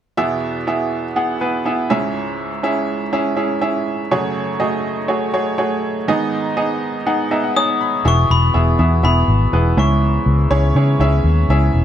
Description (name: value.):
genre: pop.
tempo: 122 BPM.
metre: 4/4.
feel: straight.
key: E major.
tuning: A4 = 442 Hz.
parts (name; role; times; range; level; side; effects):
bright upright piano; accompaniment; 0.2-11.8 s; C#2 to B5; -18 LUFS; right 2 dB; none.
glockenspiel with brass mallets; melody; 7.6-10.7 s; B5 to D#6; -20 LUFS; left 4 dB; none.
tonewheel organ; sustained chords; 8.0-11.8 s; B2 to G#4; -26 LUFS; left 4 dB; stopped rotary speaker.
vintage muted fingered electric bass; bass; 8.1-11.8 s; E1 to C#3; -14 LUFS; left 1 dB; none.
room: moderate large studio reverb, RT60 0.9 s, small room ambience.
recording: dark, warm production.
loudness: -15 LUFS.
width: side -10 dB against mid.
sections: 0.2-8.0 A section; 8.0-11.8 B section.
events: upright piano fill 7.1-8.0.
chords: 0.2 E; 1.9 C#m; 4.1 F#madd9; 6.1 G#m; 8.0 E; 9.8 C#m.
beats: | 0.18 0.67 1.16 1.65 | 2.15 2.64 3.13 3.62 | 4.11 4.61 5.10 5.59 | 6.08 6.57 7.07 7.56 | 8.05 8.54 9.03 9.53 | 10.02 10.51 11.00 11.49.